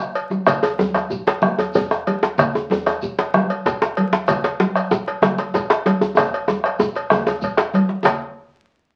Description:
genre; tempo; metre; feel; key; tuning
west african traditional, West African drum ensemble; 127 BPM (dotted quarters); 12/8; straight; none; none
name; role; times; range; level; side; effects
shekere; percussion; 0.1-8.2 s; none; -42 LUFS; equal; none
cowbell; percussion; 0.2-8.2 s; none; -27 LUFS; equal; none
bombo; percussion; 0.3-8.2 s; none; -24 LUFS; equal; none
congas; percussion; 0.3-8.2 s; none; -25 LUFS; equal; none
djembe; percussion; 0.3-8.2 s; none; -30 LUFS; equal; none
djembe; percussion; 0.6-8.2 s; none; -22 LUFS; equal; none
room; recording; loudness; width
wet studio reverb, RT60 0.6 s; very old 78 rpm record, vinyl crackle; -19 LUFS; mono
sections
0.5-8.1 A section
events
speeding up 0.0-9.0; drum fill 6.2-8.1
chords
none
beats
| 0.47 0.95 1.43 1.91 | 2.39 2.86 3.34 3.81 | 4.29 4.76 5.23 5.71 | 6.18 6.65 7.12 7.58 | 8.05

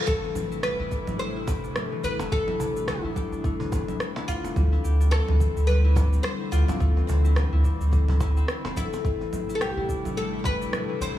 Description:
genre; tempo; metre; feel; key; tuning
organic downtempo; 107 BPM; 4/4; swing 58% on 16ths; A minor; A4 = 437 Hz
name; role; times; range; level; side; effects
oud; melody; 0.0-11.2 s; E4 to C5; -31 LUFS; equal; digital delay
airy breathy pad; sustained chords; 0.0-11.2 s; C3 to E4; -36 LUFS; right 1 dB; chorus, sidechain pumping
concert harp; arpeggios; 0.0-11.2 s; E3 to A4; -32 LUFS; left 7 dB; tape echo
round analog bass; bass; 0.1-11.1 s; D1 to D2; -24 LUFS; equal; sidechain pumping
electronic kick drum; drums; 0.1-10.6 s; none; -27 LUFS; equal; overdrive
electronic shaker, congas and rim click; drums; 0.1-11.1 s; none; -33 LUFS; right 1 dB; overdrive
cajon; percussion; 0.2-10.6 s; none; -38 LUFS; right 3 dB; none
room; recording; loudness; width
small room ambience; none; -22 LUFS; side -12 dB against mid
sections
0.1-11.2 A section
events
band accent 0.0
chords
0.1 Am; 4.6 Dm7; 9.0 Am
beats
| 0.08 0.64 1.20 1.76 | 2.32 2.88 3.44 4.00 | 4.56 5.12 5.68 6.24 | 6.80 7.37 7.93 8.49 | 9.05 9.61 10.17 10.73

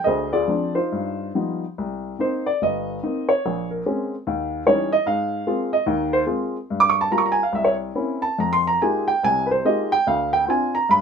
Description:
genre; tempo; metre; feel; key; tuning
solo jazz; 144 BPM; 4/4; swing 64% on 8ths, rubato; C minor; A4 = 440 Hz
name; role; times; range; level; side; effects
dark upright piano; solo; 0.0-11.0 s; G1 to D6; -19 LUFS; equal; none
room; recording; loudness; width
light reverb; minimal, uncompressed stereo recording; -19 LUFS; side -6 dB against mid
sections
0.0-1.8 A section; 1.8-11.0 B section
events
upright piano solo 1.8-11.0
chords
0.1 Dm7b5; 0.9 G7b13; 1.8 Cm7; 3.4 Bbm9; 4.3 Eb7b9; 5.1 Ab69; 6.7 Gm7b5; 7.5 C7b9; 8.4 Fm11; 10.1 Bb13/D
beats
| 0.06 0.48 0.90 1.34 | 1.76 2.19 2.61 3.02 | 3.44 3.85 4.26 4.67 | 5.08 5.48 5.88 6.29 | 6.70 7.12 7.53 7.96 | 8.39 8.81 9.23 9.65 | 10.07 10.48 10.89

